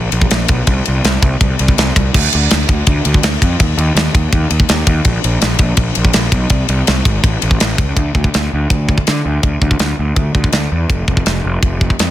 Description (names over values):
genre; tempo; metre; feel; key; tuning
heavy metal; 165 BPM; 4/4; straight; D minor from 8.0 s; A4 = 440 Hz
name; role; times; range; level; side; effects
fuzz picked electric bass; bass; 0.0-12.1 s; F1 to D3; -15 LUFS; equal; overdrive
tight metal drum kit; drums; 0.1-12.1 s; crash cymbal, kick drum, ride cymbal, snare drum; -14 LUFS; equal; soft clipping on kick, soft clipping on snare
room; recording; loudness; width
little or no reverb; dense, heavily limited modern master; -11 LUFS; side -13 dB against mid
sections
0.0-8.0 A section; 8.0-12.1 B section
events
none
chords
none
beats
0.33 | 0.69 1.05 1.42 1.78 | 2.15 2.51 2.88 3.24 | 3.60 3.97 4.33 4.70 | 5.06 5.42 5.79 6.15 | 6.51 6.88 7.24 7.61 | 7.97 8.34 8.70 9.07 | 9.44 9.80 10.17 10.54 | 10.90 11.27 11.64 12.00